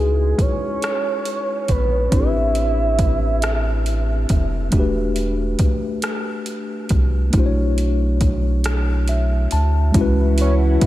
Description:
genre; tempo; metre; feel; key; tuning
slow six-eight R&B; 46 BPM (dotted quarters); 6/8; straight; C# phrygian; A4 = 440 Hz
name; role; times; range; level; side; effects
soft octave-layered synth lead; melody; 0.0-4.3, 10.4-10.6 s; G#4 to E5; -23 LUFS; right 1 dB; chorus, phaser, analog delay
mellow tine electric piano; accompaniment; 0.0-10.9 s; G#3 to A5; -24 LUFS; left 2 dB; medium stereo tremolo
rubbery square bass; bass; 0.0-10.9 s; E1 to D2; -19 LUFS; equal; none
smooth R&B drum kit; drums; 0.4-10.9 s; hi-hat, kick drum, rim click; -22 LUFS; equal; none
lush unison pad; sustained chords; 9.9-10.9 s; E3 to B4; -24 LUFS; equal; chorus
room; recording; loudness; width
light reverb, digital ambience; none; -17 LUFS; side -15 dB against mid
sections
0.0-9.9 A section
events
tine electric piano fill 8.6-9.9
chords
0.0 C#m11; 2.1 Am11; 4.7 Em11; 7.3 Bm11; 9.9 C#m11

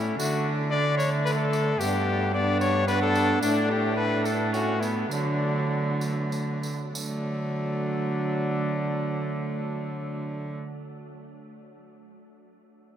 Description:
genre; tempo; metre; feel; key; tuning
classical, renaissance-style consort dance; 93-112 BPM; 3/4; straight; D major; A4 = 439 Hz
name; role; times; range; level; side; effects
warm cornet; melody; 0.0-10.5 s; D4 to D5; -30 LUFS; left 3 dB; none
warm viola; second line; 0.0-10.5 s; A3 to D4; -32 LUFS; right 3 dB; none
clear trombone; accompaniment; 0.0-10.5 s; F#3 to B3; -32 LUFS; left 1 dB; none
warm cello; bass; 0.0-10.5 s; G2 to D3; -29 LUFS; right 2 dB; none
tambourine; percussion; 0.2-7.2 s; none; -41 LUFS; right 3 dB; none
room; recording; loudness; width
wet huge ambient reverb, RT60 8.2 s; in a vast, echoing space; -24 LUFS; side -9 dB against mid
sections
0.0-6.9 A section; 6.9-10.8 B section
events
slowing down 2.6-6.9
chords
0.2 D5; 1.8 G; 3.4 Asus4; 5.1 D

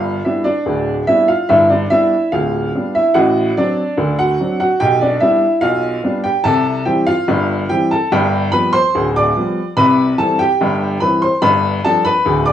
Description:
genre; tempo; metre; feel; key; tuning
ragtime piano; 72 BPM; 2/4; straight; unclear; A4 = 441 Hz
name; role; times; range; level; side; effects
warm upright piano; solo; 0.0-12.5 s; D1 to D6; -13 LUFS; equal; none
room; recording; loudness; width
moderate studio reverb, RT60 0.7 s; worn, warbling old tape, cassette tape, warbly pitch drift, small room ambience; -13 LUFS; side -10 dB against mid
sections
0.0-12.5 A section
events
none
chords
0.0 G; 3.1 D7/A; 4.8 G/B; 6.5 C; 8.1 G7; 9.8 C; 11.4 G7

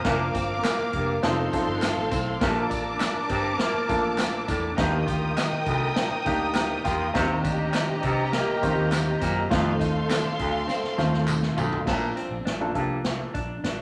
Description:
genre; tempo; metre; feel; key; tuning
uptempo 1960s-style soul; 102 BPM; 4/4; straight; Bb major; A4 = 440 Hz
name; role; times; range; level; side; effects
warm baby grand piano; accompaniment; 0.0-13.5 s; Eb3 to Bb5; -30 LUFS; equal; none
breathy baritone saxophone; riff; 0.0-13.0 s; D2 to C3; -34 LUFS; equal; none
electric guitar through a small old amp; riff; 0.0-13.8 s; Bb3 to F4; -35 LUFS; equal; spring reverb
vintage muted fingered electric bass; bass; 0.0-13.8 s; F1 to Gb2; -35 LUFS; equal; none
swinging big-band drum kit; drums; 0.0-13.8 s; crash cymbal, hi-hat, kick drum, snare drum, toms; -32 LUFS; equal; none
warm studio violin section; second line; 0.1-11.8 s; G4 to Eb6; -32 LUFS; equal; none
tambourine and handclaps; percussion; 0.4-11.7 s; none; -39 LUFS; equal; none
room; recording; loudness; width
moderate large studio reverb, RT60 1.4 s; none; -25 LUFS; mono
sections
0.0-11.9 A section; 11.9-13.8 B section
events
grand piano fill 6.3-7.1; drum fill 10.7-11.9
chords
0.1 Bb/F; 1.2 F7; 2.4 Bbmaj7; 4.8 Ebmaj7; 7.1 Cm7; 9.5 F7; 11.9 Bbmaj7

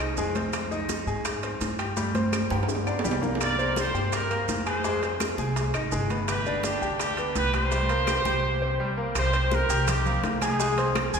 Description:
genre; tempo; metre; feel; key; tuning
latin, salsa; 167 BPM; 4/4; straight; C minor; A4 = 440 Hz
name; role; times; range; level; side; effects
bright baby grand piano; accompaniment; 0.0-11.2 s; G3 to Ab6; -30 LUFS; left 1 dB; none
upright bass; bass; 0.0-11.2 s; G1 to Ab2; -30 LUFS; equal; none
bongos; percussion; 0.0-11.1 s; none; -35 LUFS; left 3 dB; none
claves; percussion; 0.0-11.1 s; none; -41 LUFS; left 8 dB; none
congas; percussion; 0.0-11.2 s; none; -34 LUFS; equal; none
maracas; percussion; 0.0-11.2 s; none; -38 LUFS; right 7 dB; none
timbales; percussion; 0.4-11.1 s; none; -34 LUFS; right 4 dB; none
bright trumpet section; melody; 3.4-10.9 s; D4 to D5; -29 LUFS; right 1 dB; none
room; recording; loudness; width
wet church reverb, RT60 3.7 s; recorded in a church or concert hall; -24 LUFS; side -6 dB against mid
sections
0.0-9.2 A section; 9.2-11.2 A section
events
drum fill 2.0-3.4; break 8.4-9.2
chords
0.0 Ab/C; 0.5 Fm7; 2.0 Gsus4; 2.7 G5; 3.4 C5; 4.8 Fm9; 6.3 G; 7.7 C5; 9.2 Cm7; 10.6 Ab/C

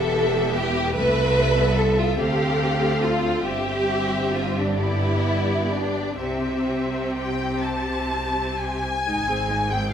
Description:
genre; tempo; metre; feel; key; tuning
classical, slow romantic movement for string orchestra; 41-50 BPM (dotted quarters); 6/8; rubato; C major; A4 = 440 Hz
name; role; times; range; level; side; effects
warm studio violin section; melody; 0.0-9.9 s; D5 to A5; -28 LUFS; left 2 dB; none
rich studio violin section; second line; 0.0-7.6 s; C4 to B4; -24 LUFS; equal; none
rich studio viola section; accompaniment; 0.0-9.9 s; Ab3 to A4; -27 LUFS; equal; none
clear studio double bass section; bass; 0.0-9.9 s; E1 to D2; -28 LUFS; right 2 dB; none
rich studio cello section; bass; 0.0-9.9 s; C2 to C3; -29 LUFS; right 1 dB; none
room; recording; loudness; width
wet recital hall reverb, RT60 1.5 s; none; -20 LUFS; side -8 dB against mid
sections
0.0-9.1 A section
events
none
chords
0.0 Em; 1.0 Am/C; 2.2 Dm7; 3.5 C/G; 4.8 G; 6.2 C; 9.1 Ab

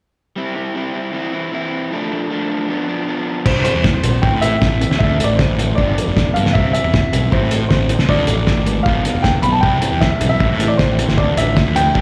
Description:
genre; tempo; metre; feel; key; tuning
indie rock; 155 BPM; 4/4; straight; C major; A4 = 440 Hz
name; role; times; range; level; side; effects
crunchy overdriven guitar; riff; 0.4-12.0 s; E3 to E4; -24 LUFS; equal; none
clear upright piano; melody; 3.5-12.0 s; C5 to B5; -22 LUFS; equal; slapback echo
fuzz picked electric bass; bass; 3.5-12.0 s; F1 to A2; -20 LUFS; equal; overdrive
cloth-damped thuddy drum kit; drums; 3.5-12.0 s; crash cymbal, hi-hat, kick drum, snare drum; -20 LUFS; equal; none
overdriven electric guitar; riff; 9.6-12.0 s; G2 to E4; -27 LUFS; equal; none
room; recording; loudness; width
light reverb; live gig heard through the venue's PA, recital hall reverb; -17 LUFS; mono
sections
0.4-3.5 A section; 3.5-12.0 B section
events
none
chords
0.4 C; 1.1 C/E; 1.9 Dm; 2.7 Bdim/F; 3.5 C; 4.2 Am; 5.0 Dm; 5.8 G7; 6.5 C; 7.3 Am; 8.1 Dm; 8.9 G7; 9.6 C; 10.4 Am; 11.2 Dmadd9

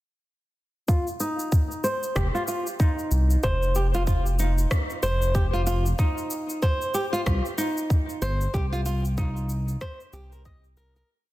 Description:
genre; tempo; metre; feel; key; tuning
organic downtempo; 94 BPM; 4/4; swing 59% on 16ths; unclear; A4 = 440 Hz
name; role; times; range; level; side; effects
flamenco guitar; arpeggios; 0.9-11.1 s; Eb4 to Eb5; -28 LUFS; equal; low-pass filter, tape echo
electronic kick drum; drums; 0.9-10.6 s; none; -24 LUFS; equal; none
electronic shaker and rim click; drums; 0.9-11.1 s; none; -34 LUFS; left 1 dB; none
smooth synth bass; bass; 2.2-11.0 s; F1 to C2; -24 LUFS; equal; sidechain pumping
room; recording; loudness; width
light reverb, digital ambience; dense, heavily limited modern master; -22 LUFS; side -16 dB against mid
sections
0.9-11.1 groove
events
filter sweep on nylon-string guitar 0.9-11.1; fade-out 7.7-11.1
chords
0.9 F5; 6.0 Cm

